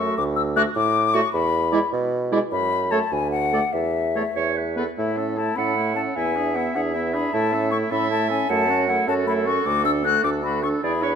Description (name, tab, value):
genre	quick classical-period movement for wind quintet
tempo	102 BPM (dotted quarters)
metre	6/8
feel	straight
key	A major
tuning	A4 = 440 Hz
part	mellow hollow silver concert flute	melody	0.0-11.2 s	E5 to F#6	-24 LUFS	left 8 dB	none
part	warm oboe	second line	0.0-11.2 s	E4 to E5	-32 LUFS	left 2 dB	none
part	mellow French horn	accompaniment	0.0-11.2 s	G#3 to E4	-28 LUFS	equal	none
part	mellow clarinet	accompaniment	0.0-11.1 s	E4 to F#5	-27 LUFS	right 9 dB	none
part	mellow bassoon	bass	0.0-11.2 s	D2 to B2	-25 LUFS	right 3 dB	none
room	moderate scoring stage reverb, RT60 1.9 s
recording	none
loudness	-20 LUFS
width	side -7 dB against mid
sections	0.0-5.0 A section; 5.0-11.2 A section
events	none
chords	0.2 D5; 1.3 E5; 2.5 F#m; 3.1 D; 3.7 A5/E; 4.4 E5; 5.0 A; 6.2 E7; 7.3 A; 8.5 F#m7; 9.7 D